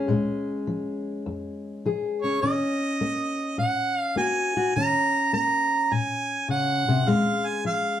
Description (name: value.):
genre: acoustic country blues, solo or duo.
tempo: 103 BPM.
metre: 4/4.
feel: swing 67% on 8ths.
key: unclear.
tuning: A4 = 440 Hz.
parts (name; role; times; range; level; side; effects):
fingerpicked steel-string acoustic guitar; accompaniment; 0.0-8.0 s; F2 to Ab4; -26 LUFS; left 2 dB; none.
clear harmonica; melody; 2.2-8.0 s; Db5 to Bb5; -24 LUFS; right 2 dB; none.
room: moderate studio reverb, RT60 0.6 s.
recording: heard from further back in the room.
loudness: -22 LUFS.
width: side -10 dB against mid.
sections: 0.0-8.0 A section.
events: none.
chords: 0.0 Bbm7; 2.4 Ebm7; 7.1 Bbm7.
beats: | 0.09 0.67 1.25 1.83 | 2.42 3.00 3.58 4.16 | 4.75 5.33 5.91 6.49 | 7.07 7.65.